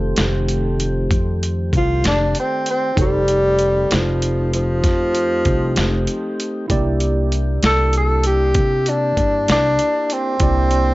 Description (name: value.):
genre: slow blues.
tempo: 64 BPM (dotted quarters).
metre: 12/8.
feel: straight.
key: F mixolydian.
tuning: A4 = 440 Hz.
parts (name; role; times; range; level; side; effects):
tine electric piano; accompaniment; 0.0-10.9 s; Bb3 to D5; -28 LUFS; right 3 dB; overdrive, analog chorus.
mellow tonewheel organ; sustained chords; 0.0-10.9 s; Eb3 to G4; -26 LUFS; left 1 dB; slow rotary speaker.
upright bass; bass; 0.0-10.9 s; F1 to C3; -20 LUFS; equal; none.
dusty soul sampler-style drum kit; drums; 0.2-10.9 s; hi-hat, kick drum, snare drum; -21 LUFS; equal; overdrive.
breathy tenor saxophone; melody; 1.8-10.9 s; F3 to A4; -18 LUFS; equal; none.
room: light reverb.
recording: nothing above 7.7 kHz.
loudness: -15 LUFS.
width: side -19 dB against mid.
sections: 0.0-10.9 A section.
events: tenor saxophone solo 0.0-10.9.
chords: 0.0 F9; 6.7 C9.